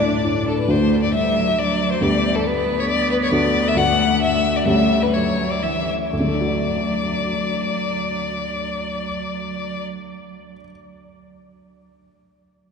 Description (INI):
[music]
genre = quick classical-period movement for piano quartet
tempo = 118-138 BPM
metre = 3/4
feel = rubato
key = D major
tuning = A4 = 440 Hz
[part]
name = dark violin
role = melody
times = 0.0-9.8 s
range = A4 to F#5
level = -22 LUFS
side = left 4 dB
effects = none
[part]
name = clear cello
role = second line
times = 0.0-9.8 s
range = E3 to D4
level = -25 LUFS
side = right 4 dB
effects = none
[part]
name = rich violin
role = second line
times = 0.0-0.5 s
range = D5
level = -36 LUFS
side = left 3 dB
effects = none
[part]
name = warm grand piano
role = accompaniment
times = 0.0-10.7 s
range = D2 to D5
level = -21 LUFS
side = left 2 dB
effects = none
[sound]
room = wet cathedral reverb, RT60 5.0 s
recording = recorded in a church or concert hall, nothing above 10.7 kHz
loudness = -18 LUFS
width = side -6 dB against mid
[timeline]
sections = 0.7-6.1 A section; 6.1-9.1 B section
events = slowing down 2.7-6.1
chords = 0.0 D5; 0.7 D; 2.0 G/D; 3.3 D; 4.7 A7/D; 6.1 D